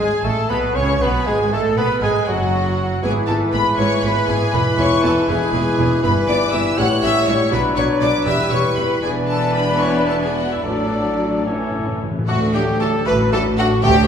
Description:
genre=quick classical-period movement for symphony orchestra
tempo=79 BPM (dotted quarters)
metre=6/8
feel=rubato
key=E major, D major from 6.0 s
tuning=A4 = 441 Hz
part: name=rich studio violin section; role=melody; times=0.0-14.1 s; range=D5 to F#6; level=-25 LUFS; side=left 4 dB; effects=none
part: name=bright clarinet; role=second line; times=0.0-13.9 s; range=F#4 to D5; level=-26 LUFS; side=left 1 dB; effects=none
part: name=mellow small flute group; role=second line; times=0.0-13.9 s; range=D4 to D6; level=-26 LUFS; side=left 1 dB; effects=none
part: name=rich studio violin section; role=second line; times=0.0-14.1 s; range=D4 to F#5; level=-26 LUFS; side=left 2 dB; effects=none
part: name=warm bassoon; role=accompaniment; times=0.0-13.9 s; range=E3 to C#4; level=-27 LUFS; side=right 2 dB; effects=none
part: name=warm studio viola section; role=accompaniment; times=0.0-13.7 s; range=E3 to G4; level=-26 LUFS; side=right 1 dB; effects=none
part: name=dark French horn section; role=sustained chords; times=0.0-14.1 s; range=E3 to A4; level=-24 LUFS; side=left 3 dB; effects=none
part: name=clear trumpet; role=stabs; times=0.0-14.1 s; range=F#4 to C#5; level=-25 LUFS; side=equal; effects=none
part: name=clear studio double bass section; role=bass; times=0.0-14.1 s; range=E1 to D2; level=-24 LUFS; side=right 2 dB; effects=none
part: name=rich studio cello section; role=bass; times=0.0-14.1 s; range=D2 to C#3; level=-25 LUFS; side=right 2 dB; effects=none
part: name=timpani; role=percussion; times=11.5-14.1 s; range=A2 to D3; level=-25 LUFS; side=left 1 dB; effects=none
room=wet recital hall reverb, RT60 1.8 s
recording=recorded in a church or concert hall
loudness=-15 LUFS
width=side -8 dB against mid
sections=0.0-12.3 A section; 12.3-14.1 B section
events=timpani fill 11.5-12.3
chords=0.0 Amaj9; 1.5 B5; 3.0 E/G#; 4.5 E; 6.0 Em/G; 6.8 A7; 7.5 Bm; 8.3 Em; 9.0 E5; 10.6 D/A; 11.5 A; 12.3 D

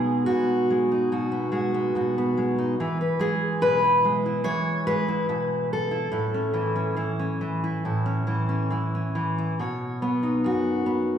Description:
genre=folk, solo fingerstyle acoustic guitar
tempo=71 BPM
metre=4/4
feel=rubato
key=unclear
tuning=A4 = 438 Hz
part: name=fingerpicked steel-string acoustic guitar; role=solo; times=0.0-11.2 s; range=F#2 to C#5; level=-22 LUFS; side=equal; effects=none
room=wet recital hall reverb, RT60 1.6 s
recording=recorded in a church or concert hall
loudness=-22 LUFS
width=side -9 dB against mid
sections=0.0-11.2 A section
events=none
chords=0.0 G#m7/B; 2.8 E; 6.1 A; 9.6 Badd9

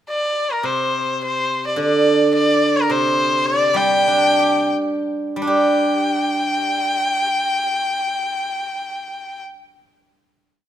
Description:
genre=chinese traditional, Chinese chamber ensemble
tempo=73-109 BPM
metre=2/4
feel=rubato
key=unclear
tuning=A4 = 442 Hz
part: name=rich erhu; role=melody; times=0.1-9.4 s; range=Bb4 to G5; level=-19 LUFS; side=left 2 dB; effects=none
part: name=steel-string zither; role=accompaniment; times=0.6-10.7 s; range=C3 to G4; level=-19 LUFS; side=right 2 dB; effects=none
room=moderate recital hall reverb, RT60 1.4 s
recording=none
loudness=-16 LUFS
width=side -10 dB against mid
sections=0.0-0.6 pickup bar; 0.6-5.5 A section; 5.5-8.7 final chord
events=slowing down 2.9-5.5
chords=none

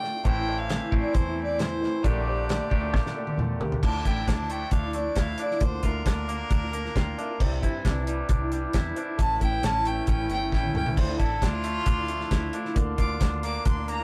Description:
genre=folk rock and heartland rock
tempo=134 BPM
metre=4/4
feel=straight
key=D minor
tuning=A4 = 440 Hz
part: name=clear fiddle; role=melody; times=0.0-14.0 s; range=F4 to D6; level=-33 LUFS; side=equal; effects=none
part: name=picked old ladder-braced acoustic guitar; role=accompaniment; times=0.0-14.0 s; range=A2 to G4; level=-36 LUFS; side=equal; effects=none
part: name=warm baby grand piano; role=accompaniment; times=0.0-13.7 s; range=C4 to A5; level=-43 LUFS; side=equal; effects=none
part: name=twangy electric guitar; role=riff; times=0.0-14.0 s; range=A2 to G4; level=-36 LUFS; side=equal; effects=none
part: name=fingered electric bass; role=bass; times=0.0-14.0 s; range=G1 to Bb2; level=-34 LUFS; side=equal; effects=none
part: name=damped 70s drum kit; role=drums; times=0.0-14.0 s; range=crash cymbal, hi-hat, kick drum, snare drum, toms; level=-29 LUFS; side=equal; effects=none
room=moderate booth ambience, RT60 0.2 s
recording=rough rehearsal-room recording, warm saturation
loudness=-26 LUFS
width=mono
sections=0.0-3.8 A section; 3.8-14.0 B section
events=drum fill 2.9-3.8, 10.5-11.0; fiddle solo 3.8-14.0; grand piano fill 6.5-7.4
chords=0.3 Am; 2.0 Gmadd9/Bb; 3.8 Dmadd9; 5.6 Bb/D; 7.4 Cadd9; 9.2 A; 11.0 Dmadd9; 12.8 Bb/D

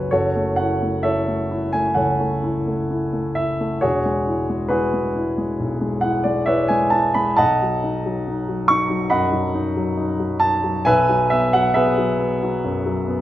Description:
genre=classical, impressionist solo piano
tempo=62-72 BPM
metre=4/4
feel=rubato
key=F# minor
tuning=A4 = 441 Hz
part: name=warm baby grand piano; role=solo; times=0.0-13.2 s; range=E1 to G#6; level=-18 LUFS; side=equal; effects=none
room=moderate recital hall reverb, RT60 1.3 s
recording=none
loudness=-18 LUFS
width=side -13 dB against mid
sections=0.1-13.2 A section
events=none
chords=0.1 F#m7; 3.8 E69; 7.4 B7; 10.9 Eadd9/B

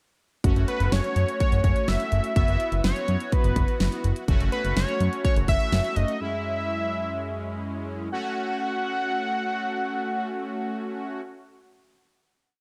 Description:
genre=synth-pop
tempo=125 BPM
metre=4/4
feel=straight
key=F# minor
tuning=A4 = 441 Hz
part: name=analog synth brass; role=accompaniment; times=0.4-11.2 s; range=F#2 to F#4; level=-34 LUFS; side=equal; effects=chorus
part: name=fat analog bass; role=bass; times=0.4-6.0 s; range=F#1 to F#2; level=-26 LUFS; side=equal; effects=none
part: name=pop drum kit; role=drums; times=0.4-6.2 s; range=hi-hat, kick drum, snare drum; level=-27 LUFS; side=equal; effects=gated reverb
part: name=fat analog lead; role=melody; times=0.7-11.2 s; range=B4 to F#5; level=-31 LUFS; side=equal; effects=digital delay
room=light reverb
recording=bright 1980s-style digital production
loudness=-25 LUFS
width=mono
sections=0.4-8.1 verse; 8.1-12.0 final chord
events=none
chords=0.4 F#m7; 2.4 Esus2/F#; 4.3 F#m7; 6.2 C#m/F#; 8.1 F#m

